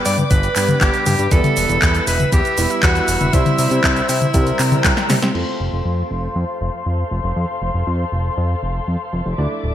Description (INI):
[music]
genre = italo disco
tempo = 119 BPM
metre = 4/4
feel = straight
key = unclear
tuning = A4 = 440 Hz
[part]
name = dark studio string section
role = sustained chords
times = 0.0-9.7 s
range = A4 to E6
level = -25 LUFS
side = left 4 dB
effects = low-pass filter
[part]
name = warm grand piano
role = stabs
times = 0.0-9.7 s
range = G3 to D5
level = -25 LUFS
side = right 4 dB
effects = lush chorus, low-pass filter
[part]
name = edgy alto saxophone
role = melody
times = 0.1-4.8 s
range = E4 to D5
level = -21 LUFS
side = right 1 dB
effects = vintage 12-bit sampler grit, digital delay
[part]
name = fat analog bass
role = bass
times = 0.1-9.7 s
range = D1 to C3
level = -20 LUFS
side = equal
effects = none
[part]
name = house drum kit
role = drums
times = 0.1-5.5 s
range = cabasa, crash cymbal, handclaps, hi-hat, snare drum, toms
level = -19 LUFS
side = left 1 dB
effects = low-pass filter on hats, low-pass filter on perc, low-pass filter on toms, low-pass filter on snare, low-pass filter on cymbals, gated reverb
[part]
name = electronic kick drum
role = drums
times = 0.3-4.9 s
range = none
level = -17 LUFS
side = equal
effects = none
[sound]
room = moderate lush hall reverb, RT60 1.6 s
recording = bright 1980s-style digital production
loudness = -15 LUFS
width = side -11 dB against mid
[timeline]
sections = 0.0-5.4 A section; 5.4-9.7 B section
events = drum fill 5.0-5.4; filter sweep on string section 5.4-9.7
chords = 0.0 G; 1.3 Em; 3.3 C; 4.3 C7; 5.4 F